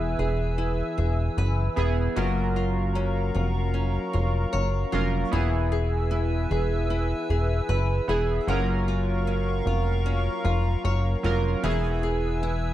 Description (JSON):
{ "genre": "indie pop, bedroom pop", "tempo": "76 BPM", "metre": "4/4", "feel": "swing 55% on 16ths", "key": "unclear", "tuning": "A4 = 440 Hz", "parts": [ { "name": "chorused retro synth keys", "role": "accompaniment", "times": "0.0-12.7 s", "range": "F#3 to A#4", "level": "-31 LUFS", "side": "right 4 dB", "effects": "none" }, { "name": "nylon-string guitar", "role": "accompaniment", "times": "0.0-12.7 s", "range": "E3 to C#5", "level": "-30 LUFS", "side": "left 3 dB", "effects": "wide subtle chorus, warbly pitch drift" }, { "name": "hollow soft pad", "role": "sustained chords", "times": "0.0-12.7 s", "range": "A#4 to E6", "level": "-34 LUFS", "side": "right 1 dB", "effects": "chorus" }, { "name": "plucky analog bass", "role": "bass", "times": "0.0-12.7 s", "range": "E1 to F#1", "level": "-25 LUFS", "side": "equal", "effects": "none" } ], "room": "little or no reverb", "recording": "none", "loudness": "-23 LUFS", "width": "side -13 dB against mid", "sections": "0.0-12.7 A section", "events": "none", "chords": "0.0 E; 2.2 F#maj7; 5.3 E; 8.5 F#maj7; 11.6 E" }